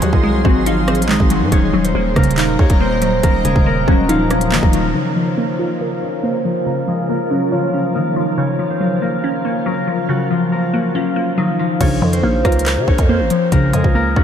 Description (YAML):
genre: hip hop, drill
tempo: 140 BPM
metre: 4/4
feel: half-time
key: Bb minor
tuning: A4 = 438 Hz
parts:
  - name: concert harp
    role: melody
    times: 0.0-14.2 s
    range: Eb3 to Db5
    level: -19 LUFS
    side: left 1 dB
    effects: low-pass filter, ping-pong delay
  - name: glassy wavetable pluck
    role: accompaniment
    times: 0.0-14.2 s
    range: Db3 to Db5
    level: -19 LUFS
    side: left 1 dB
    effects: chorus, low-pass filter
  - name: granular cloud pad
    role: sustained chords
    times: 0.0-11.8 s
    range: Db3 to C6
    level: -25 LUFS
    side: right 1 dB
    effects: built-in reverb, low-pass filter
  - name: growling 808-style bass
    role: bass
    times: 0.0-4.9, 11.8-14.2 s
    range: Eb1 to Db3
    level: -19 LUFS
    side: equal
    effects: none
  - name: drill drum kit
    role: drums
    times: 0.0-4.8, 11.8-14.2 s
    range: crash cymbal, handclaps, hi-hat, kick drum, rim click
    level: -17 LUFS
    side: equal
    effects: none
room: moderate huge ambient reverb, RT60 8.3 s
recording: dreamy mix soaked in reverb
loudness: -14 LUFS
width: side -8 dB against mid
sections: 0.0-4.9 A section; 4.9-11.8 B section; 11.8-14.2 C section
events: filter sweep 4.9-11.8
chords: 0.0 Ab7; 1.5 Ebm7; 4.9 Bbm; 8.4 Gbmaj7; 11.8 Bbm